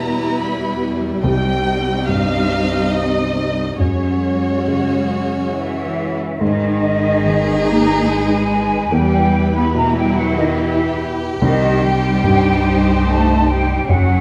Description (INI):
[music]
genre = cinematic, emotional film score for orchestra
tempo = 72 BPM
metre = 3/4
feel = rubato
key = unclear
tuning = A4 = 436 Hz
[part]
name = warm symphonic violin section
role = melody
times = 0.0-14.2 s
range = B4 to B5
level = -29 LUFS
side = equal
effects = none
[part]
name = rich chamber violin section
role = second line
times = 0.0-14.2 s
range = Eb4 to Eb5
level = -27 LUFS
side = equal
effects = none
[part]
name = warm grand piano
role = accompaniment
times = 0.0-14.2 s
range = C2 to D#3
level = -22 LUFS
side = equal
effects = none
[part]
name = warm symphonic viola section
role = accompaniment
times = 0.0-14.2 s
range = G3 to E4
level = -25 LUFS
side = equal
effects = none
[part]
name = rich symphonic cello section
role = bass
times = 0.0-14.2 s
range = C2 to B3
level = -24 LUFS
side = equal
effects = none
[part]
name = large flute ensemble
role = second line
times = 5.5-14.2 s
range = Eb5 to B5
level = -24 LUFS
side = equal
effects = none
[part]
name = warm symphonic double bass section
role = bass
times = 6.4-14.2 s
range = F#1 to E2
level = -24 LUFS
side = equal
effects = none
[sound]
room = moderate recital hall reverb, RT60 1.5 s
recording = none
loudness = -17 LUFS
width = mono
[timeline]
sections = 0.0-6.4 A section; 6.4-14.2 A section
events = none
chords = 0.0 Em; 1.2 Cm; 3.8 F#sus2; 6.4 G#m; 8.9 Em; 11.4 Cm